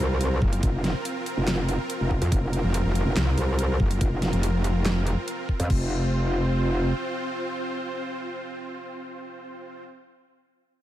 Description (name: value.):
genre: heavy wobble dubstep.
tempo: 142 BPM.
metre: 4/4.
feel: half-time.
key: unclear.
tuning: A4 = 442 Hz.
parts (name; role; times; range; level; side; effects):
supersaw chords; sustained chords; 0.0-9.8 s; C4 to C5; -31 LUFS; right 1 dB; sidechain pumping.
metallic wobble bass; bass; 0.0-6.9 s; F1 to F2; -24 LUFS; equal; chorus, overdrive.
dubstep drum kit; drums; 0.0-5.8 s; crash cymbal, handclaps, hi-hat, snare drum; -31 LUFS; equal; none.
metallic wobble bass; bass; 0.4-5.2 s; F1 to F2; -23 LUFS; equal; distortion, chorus, overdrive.
electronic kick drum; drums; 0.4-5.8 s; none; -24 LUFS; equal; none.
room: little or no reverb.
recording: none.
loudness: -23 LUFS.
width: side -13 dB against mid.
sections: 0.0-5.7 A section; 5.7-9.1 B section.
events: drop 0.0-5.7.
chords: 0.0 F5.